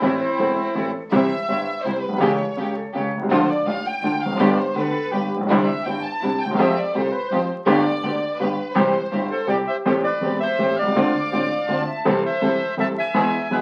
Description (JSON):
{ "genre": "tango", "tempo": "165 BPM", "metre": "3/4", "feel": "rubato", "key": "C major, A minor from 9.9 s", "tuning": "A4 = 445 Hz", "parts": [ { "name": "bandoneon", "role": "melody", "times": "0.0-0.9, 9.3-13.6 s", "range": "C4 to A5", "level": "-26 LUFS", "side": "equal", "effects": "none" }, { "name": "clear upright piano", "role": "accompaniment", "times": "0.0-13.6 s", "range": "E1 to A4", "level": "-23 LUFS", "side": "equal", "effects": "none" }, { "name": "clear studio string section", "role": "stabs", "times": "0.0-13.6 s", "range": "G3 to A4", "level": "-32 LUFS", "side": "equal", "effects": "none" }, { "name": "upright bass", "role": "bass", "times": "0.0-13.6 s", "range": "E1 to F2", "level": "-38 LUFS", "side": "equal", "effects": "none" }, { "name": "mellow concert flute", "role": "second line", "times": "0.2-12.1 s", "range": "E4 to E5", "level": "-31 LUFS", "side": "equal", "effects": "none" }, { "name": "clear studio violin section", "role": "second line", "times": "1.1-12.1 s", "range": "B4 to D6", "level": "-29 LUFS", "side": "equal", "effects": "none" } ], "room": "wet small room reverb, RT60 0.5 s", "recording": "very old 78 rpm record, vinyl crackle", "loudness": "-21 LUFS", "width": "mono", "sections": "0.0-1.1 A section; 1.1-9.9 B section; 9.9-13.6 A section", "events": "violin section solo 1.1-9.9", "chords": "0.0 Am; 1.1 C; 2.2 A7/C#; 3.3 Dm; 4.4 G; 5.5 Cadd9; 6.6 Fadd9; 7.7 Gadd9; 8.8 C; 9.9 Am7; 11.0 Dm7; 12.0 Am/C" }